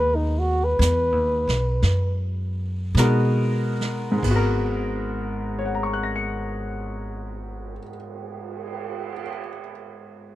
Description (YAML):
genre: jazz ballad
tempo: 45-64 BPM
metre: 4/4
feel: swing 67% on 8ths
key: G# minor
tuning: A4 = 439 Hz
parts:
  - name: breathy flugelhorn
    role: melody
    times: 0.0-2.2 s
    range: D#4 to B4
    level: -23 LUFS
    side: equal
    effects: none
  - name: clear baby grand piano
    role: accompaniment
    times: 0.0-10.4 s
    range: G#2 to C#7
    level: -26 LUFS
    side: left 1 dB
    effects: none
  - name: upright bass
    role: bass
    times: 0.0-7.8 s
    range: G#1 to B2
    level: -24 LUFS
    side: equal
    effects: none
  - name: vintage brush drum kit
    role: drums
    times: 0.8-9.3 s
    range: brushed snare drum, crash cymbal, cymbal swell, hi-hat, kick drum, snare drum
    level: -32 LUFS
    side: right 5 dB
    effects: none
room: little or no reverb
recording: none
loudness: -21 LUFS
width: side -15 dB against mid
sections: 0.0-4.2 A section; 4.2-9.6 B section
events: slowing down 0.0-4.2; flugelhorn solo 0.0-4.2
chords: 0.0 G#m9